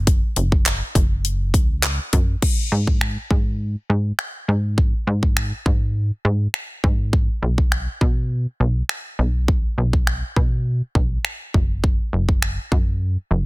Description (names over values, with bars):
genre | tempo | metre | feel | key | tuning
dance-pop | 102 BPM | 4/4 | straight | G# minor | A4 = 440 Hz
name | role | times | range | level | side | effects
plucky analog bass | bass | 0.0-13.5 s | F#1 to B2 | -21 LUFS | equal | sidechain pumping
pop drum kit | drums | 0.1-12.9 s | crash cymbal, finger snaps, handclaps, hi-hat, kick drum | -19 LUFS | equal | soft clipping on snare
room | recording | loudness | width
little or no reverb | dense, heavily limited modern master | -18 LUFS | side -20 dB against mid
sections
0.0-2.4 A section; 2.4-13.5 B section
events
drop 0.0-2.4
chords
none